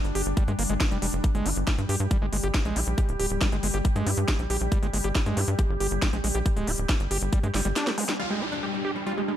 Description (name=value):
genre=psychedelic trance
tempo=138 BPM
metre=4/4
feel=straight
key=G phrygian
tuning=A4 = 443 Hz
part: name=evolving wavetable pad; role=sustained chords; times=0.0-9.4 s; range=G3 to G4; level=-33 LUFS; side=left 1 dB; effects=chorus, built-in reverb, sidechain pumping
part: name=tight sequencer bass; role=bass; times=0.0-7.7 s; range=D1 to G2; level=-27 LUFS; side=equal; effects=none
part: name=drum and bass drum kit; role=drums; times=0.0-8.3 s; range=crash cymbal, hi-hat, snare drum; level=-30 LUFS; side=left 1 dB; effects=low-pass filter on hats, studio ambience, low-pass filter on snare, low-pass filter on cymbals
part: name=overdriven acid bass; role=riff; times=0.2-9.3 s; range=G3 to G4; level=-32 LUFS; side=right 1 dB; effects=distortion, auto-pan, sidechain pumping, tape echo
part: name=electronic kick drum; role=drums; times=0.4-7.4 s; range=none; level=-24 LUFS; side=equal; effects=studio ambience
part: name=zap and downlifter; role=sound effects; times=8.0-9.4 s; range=none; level=-33 LUFS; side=equal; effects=none
part: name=supersaw stab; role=melody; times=8.2-9.4 s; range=G3 to F4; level=-31 LUFS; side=left 1 dB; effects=phaser, sidechain pumping, tape echo
part: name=airy breathy pad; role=texture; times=8.3-9.4 s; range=D4 to G5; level=-34 LUFS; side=right 3 dB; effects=chorus, sidechain pumping
room=little or no reverb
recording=none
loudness=-23 LUFS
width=side -11 dB against mid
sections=0.0-8.2 A section; 8.2-9.4 B section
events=drum fill 7.5-8.2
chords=0.0 G5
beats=0.37 0.80 | 1.24 1.67 2.11 2.54 | 2.98 3.41 3.85 4.28 | 4.72 5.15 5.59 6.02 | 6.46 6.89 7.33 7.76 | 8.20 8.63 9.06